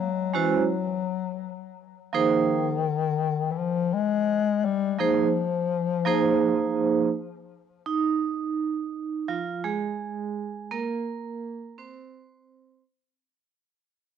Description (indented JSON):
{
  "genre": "hip hop",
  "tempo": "84 BPM",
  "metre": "4/4",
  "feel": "swing 59% on 16ths",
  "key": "F minor",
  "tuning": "A4 = 440 Hz",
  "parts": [
    { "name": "breathy bass clarinet", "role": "melody", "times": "0.0-7.1 s", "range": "Eb3 to Ab3", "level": "-26 LUFS", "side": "left 8 dB", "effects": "cassette tape, plate reverb, analog delay" },
    { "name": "vibraphone with medium hard mallets", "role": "accompaniment", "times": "0.3-12.8 s", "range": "F3 to C5", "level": "-24 LUFS", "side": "right 6 dB", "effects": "cassette tape, plate reverb" }
  ],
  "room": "moderate booth ambience, RT60 0.2 s",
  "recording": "home recording on cassette, nothing above 10.7 kHz",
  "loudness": "-24 LUFS",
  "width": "side -8 dB against mid",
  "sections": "0.0-7.9 A section; 7.9-13.6 B section",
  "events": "fade-out 7.9-13.6; vibraphone solo 7.9-13.6",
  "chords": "0.0 Gb7sus2; 2.1 Fm7; 10.7 Bbsus2; 12.1 N.C."
}